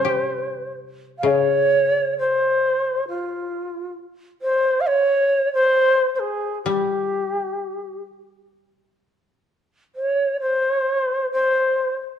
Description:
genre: japanese traditional, Japanese chamber music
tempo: 66 BPM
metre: 2/4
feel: uneven beats, rubato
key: C miyako bushi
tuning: A4 = 440 Hz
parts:
  - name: reedy long shakuhachi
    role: melody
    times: 0.0-11.9 s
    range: F4 to F5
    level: -19 LUFS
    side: equal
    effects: none
  - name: koto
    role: accompaniment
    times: 0.0-9.5 s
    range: C3 to G4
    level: -24 LUFS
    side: left 6 dB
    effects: none
room: moderate recital hall reverb, RT60 1.5 s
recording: dark, warm production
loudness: -18 LUFS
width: side -8 dB against mid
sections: 0.0-1.2 A section; 1.2-12.2 B section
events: none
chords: none

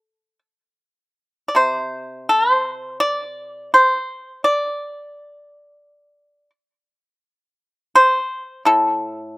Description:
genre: chinese traditional, Chinese solo plucked strings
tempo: 78-88 BPM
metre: 4/4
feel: rubato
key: unclear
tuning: A4 = 438 Hz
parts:
  - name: pipa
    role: solo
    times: 0.0-9.4 s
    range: A2 to D5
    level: -15 LUFS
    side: equal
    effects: none
room: little or no reverb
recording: recorded outdoors, with no room sound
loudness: -16 LUFS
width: side -23 dB against mid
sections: 0.0-9.4 A section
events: none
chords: none

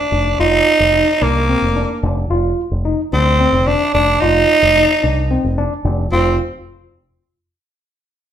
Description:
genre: progressive instrumental, band music in an uneven meter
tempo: 220 BPM (eighths)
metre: 7/8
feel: straight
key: unclear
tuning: A4 = 439 Hz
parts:
  - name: growling tenor saxophone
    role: melody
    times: 0.0-6.4 s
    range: Bb3 to Eb4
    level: -14 LUFS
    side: right 2 dB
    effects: none
  - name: bright tine electric piano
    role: arpeggios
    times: 0.1-6.4 s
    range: C4 to F4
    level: -21 LUFS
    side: left 1 dB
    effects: none
  - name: fingered electric bass with an envelope filter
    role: bass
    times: 0.1-6.4 s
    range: F1 to D2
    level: -18 LUFS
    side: equal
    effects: none
room: moderate large studio reverb, RT60 0.9 s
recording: band playing live in one room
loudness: -12 LUFS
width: side -10 dB against mid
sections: 0.0-6.1 A section; 6.1-8.0 B section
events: none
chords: 0.0 F5

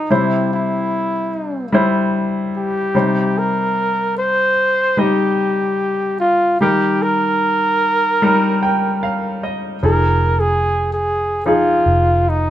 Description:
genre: pop ballad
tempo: 74 BPM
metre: 4/4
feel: straight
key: unclear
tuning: A4 = 439 Hz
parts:
  - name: warm flugelhorn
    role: melody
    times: 0.0-12.5 s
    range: Eb4 to C5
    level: -17 LUFS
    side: equal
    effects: none
  - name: clear baby grand piano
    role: accompaniment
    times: 0.0-12.5 s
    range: C3 to G5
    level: -18 LUFS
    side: left 1 dB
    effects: none
  - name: vintage muted fingered electric bass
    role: bass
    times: 9.8-12.5 s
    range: F1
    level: -18 LUFS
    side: equal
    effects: none
room: moderate stone room reverb, RT60 0.9 s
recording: band playing live in one room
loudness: -14 LUFS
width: side -12 dB against mid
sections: 0.0-12.5 A section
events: grand piano fill 8.2-9.8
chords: 0.1 C; 2.9 Cm; 6.6 Eb; 9.8 Fm7

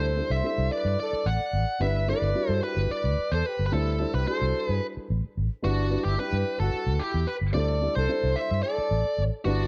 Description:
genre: jazz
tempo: 219 BPM (eighths)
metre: 7/8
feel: straight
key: unclear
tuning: A4 = 440 Hz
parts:
  - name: bluesy overdriven lead guitar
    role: melody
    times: 0.0-9.7 s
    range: F#4 to F#5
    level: -31 LUFS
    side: equal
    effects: distortion, slapback echo
  - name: mellow silver concert flute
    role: second line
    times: 0.0-9.7 s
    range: D4 to D5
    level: -37 LUFS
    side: equal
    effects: none
  - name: dark concert grand piano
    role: accompaniment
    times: 0.0-9.7 s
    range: G3 to C5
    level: -35 LUFS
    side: equal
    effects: none
  - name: vintage muted fingered electric bass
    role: bass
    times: 0.0-9.7 s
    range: G1 to G2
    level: -29 LUFS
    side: equal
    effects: none
room: moderate large studio reverb, RT60 1.4 s, small room ambience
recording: dark, warm production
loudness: -27 LUFS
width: mono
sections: 0.0-9.7 A section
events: none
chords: 0.0 D9sus4; 1.8 G6; 3.7 D9sus4; 5.6 G6; 7.6 D9sus4

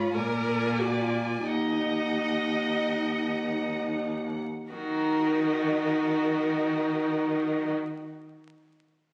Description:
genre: classical, slow romantic movement for string quartet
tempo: 32-50 BPM (dotted quarters)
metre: 6/8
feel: rubato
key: Eb minor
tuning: A4 = 441 Hz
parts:
  - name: rich violin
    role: melody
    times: 0.0-7.7 s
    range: Bb4 to Cb6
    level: -37 LUFS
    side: equal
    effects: none
  - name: clear violin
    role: second line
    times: 0.0-7.7 s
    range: Gb4 to Eb5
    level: -37 LUFS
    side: equal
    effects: none
  - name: warm viola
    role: accompaniment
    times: 0.0-7.7 s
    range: Eb4 to Bb4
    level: -32 LUFS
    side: equal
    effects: none
  - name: rich cello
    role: bass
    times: 0.0-7.7 s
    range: Eb2 to Eb3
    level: -32 LUFS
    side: equal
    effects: none
room: moderate recital hall reverb, RT60 1.6 s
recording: recorded on a phone in the room, studio ambience, vinyl crackle, compression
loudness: -28 LUFS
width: mono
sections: 0.0-4.7 A section; 4.7-9.1 B section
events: slowing down 0.0-4.7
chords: 0.1 Bb7; 1.5 Ebm

